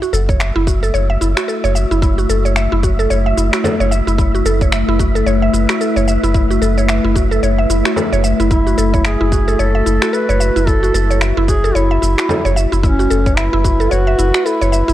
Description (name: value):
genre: organic downtempo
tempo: 111 BPM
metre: 4/4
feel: swing 59% on 16ths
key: F# minor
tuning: A4 = 440 Hz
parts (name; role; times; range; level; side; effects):
- warbly tape-like pad; sustained chords; 0.6-14.9 s; A3 to B4; -21 LUFS; left 2 dB; chorus, built-in reverb, sidechain pumping
- mallet-like synth pluck; arpeggios; 0.0-14.9 s; E4 to E5; -19 LUFS; right 1 dB; chorus, tape echo
- electronic shaker and finger snaps; drums; 0.0-14.9 s; none; -22 LUFS; equal; overdrive
- wind-like tuned noise texture; texture; 0.2-14.9 s; E5; -27 LUFS; right 3 dB; built-in reverb
- warm sub bass; bass; 0.1-14.9 s; F#1; -16 LUFS; equal; tube saturation
- electronic kick drum; drums; 0.3-13.8 s; none; -16 LUFS; equal; none
- frame drum; percussion; 3.6-3.8, 8.0-8.1, 12.3-12.4 s; none; -22 LUFS; right 2 dB; none
- warm duduk; melody; 8.5-14.9 s; C#4 to B4; -19 LUFS; equal; tape echo
room: little or no reverb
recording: dry, gritty hardware recording, cassette tape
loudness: -12 LUFS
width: side -13 dB against mid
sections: 0.0-14.9 A section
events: none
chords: 0.0 F#m7